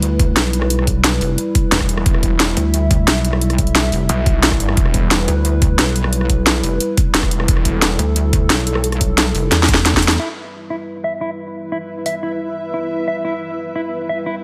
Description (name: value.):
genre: dark technical drum and bass.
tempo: 177 BPM.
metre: 4/4.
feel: straight.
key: E minor.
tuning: A4 = 440 Hz.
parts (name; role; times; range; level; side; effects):
dark analog pad; sustained chords; 0.0-14.4 s; G3 to E5; -25 LUFS; equal; chorus, sidechain pumping.
pulsing pluck wobble bass; bass; 0.0-10.2 s; F1 to E2; -20 LUFS; equal; chorus, tube saturation.
drum and bass drum kit; drums; 0.0-12.1 s; hi-hat, rim click, snare drum; -19 LUFS; equal; overdrive.
electronic kick drum; drums; 0.2-10.0 s; none; -19 LUFS; equal; overdrive.
snarling distorted saw bass; bass; 1.7-8.0 s; E1 to B1; -22 LUFS; equal; distortion, sidechain pumping.
mellow electric guitar; arpeggios; 10.2-14.3 s; E4 to E5; -27 LUFS; equal; spring reverb, sidechain pumping, low-pass filter, digital delay.
granular cloud pad; texture; 11.2-14.4 s; E4 to G5; -28 LUFS; equal; built-in reverb, sidechain pumping.
room: light reverb.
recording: none.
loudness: -17 LUFS.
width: mono.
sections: 0.0-10.2 A section; 10.2-14.4 B section.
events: drop 0.0-10.2; drum fill 9.5-10.2; band accent 10.1; filter sweep on clean electric guitar 10.2-14.4.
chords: 0.0 Em.